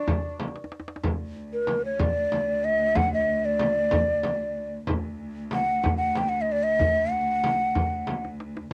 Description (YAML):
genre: Persian modal ensemble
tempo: 62 BPM (dotted quarters)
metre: 6/8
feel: straight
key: unclear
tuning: A4 = 441 Hz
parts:
  - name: breathy mellow ney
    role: melody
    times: 0.0-8.3 s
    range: Bb4+43c to G5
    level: -26 LUFS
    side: equal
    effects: cassette tape
  - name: santur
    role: second line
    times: 0.0-1.6 s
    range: F#4 to D5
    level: -45 LUFS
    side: equal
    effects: cassette tape
  - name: frame drum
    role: percussion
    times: 0.1-8.7 s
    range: none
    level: -33 LUFS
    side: equal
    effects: none
  - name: tombak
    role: percussion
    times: 0.1-8.7 s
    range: none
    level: -32 LUFS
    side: equal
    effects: none
  - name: warm cello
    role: drone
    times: 1.0-8.7 s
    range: D2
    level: -36 LUFS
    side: equal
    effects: cassette tape
room: little or no reverb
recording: home recording on cassette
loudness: -25 LUFS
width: mono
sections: 0.0-1.0 A section; 1.0-8.7 B section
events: drum fill 0.4-1.0, 8.1-8.7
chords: none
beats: 0.08 | 1.04 2.00 | 2.96 3.92 | 4.88 5.84 | 6.80 7.75 | 8.71